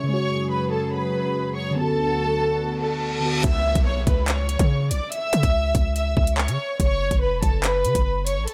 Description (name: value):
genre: hip hop, drill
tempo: 143 BPM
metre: 4/4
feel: half-time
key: C# phrygian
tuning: A4 = 442 Hz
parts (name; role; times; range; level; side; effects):
- warm studio violin section; melody; 0.0-8.5 s; A4 to E6; -27 LUFS; equal; none
- mellow tine electric piano; accompaniment; 0.0-3.5 s; C#3 to F#4; -28 LUFS; equal; none
- sweeping resonant pad; sustained chords; 0.0-3.4 s; D2 to G#4; -33 LUFS; equal; chorus
- downlifter and reverse cymbal; sound effects; 2.8-6.8 s; none; -35 LUFS; equal; none
- hard-hitting 808-style bass; bass; 3.4-8.5 s; E1 to C#3; -26 LUFS; equal; none
- drill drum kit; drums; 3.4-8.5 s; handclaps, hi-hat, kick drum; -25 LUFS; equal; none
room: digital ambience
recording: none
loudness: -22 LUFS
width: mono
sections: 0.0-3.4 A section; 3.4-8.5 B section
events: reverse cymbal 2.8-3.4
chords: 0.1 F#sus2; 1.8 D6; 3.4 C#m; 6.8 F#5